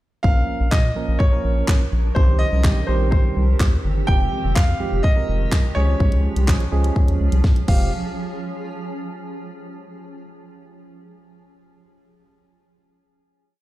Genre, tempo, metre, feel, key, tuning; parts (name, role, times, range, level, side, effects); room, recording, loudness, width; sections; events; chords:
dance-pop; 125 BPM; 4/4; straight; A4 = 440 Hz
bright concert grand piano; melody; 0.2-7.9 s; C5 to G5; -27 LUFS; equal; dub echo
tine electric piano; accompaniment; 0.2-7.9 s; Eb3 to Bb4; -28 LUFS; right 5 dB; sidechain pumping
granular cloud pad; sustained chords; 1.5-7.9 s; Eb3 to Bb4; -31 LUFS; right 2 dB; built-in reverb, sidechain pumping
round analog bass; bass; 0.2-7.9 s; F1 to Bb2; -19 LUFS; equal; sidechain pumping
pop drum kit; drums; 0.2-7.8 s; crash cymbal, handclaps, hi-hat, kick drum, snare drum; -18 LUFS; equal
little or no reverb; played on a big sound system in a bare room, stone room reverb; -17 LUFS; side -16 dB against mid
0.2-7.9 bridge; 7.9-9.8 final hit
drum fill 7.4-7.9
0.2 Bbm; 2.2 Cm; 4.1 Fmadd9; 5.8 Db; 7.7 Fmadd9; 7.9 N.C.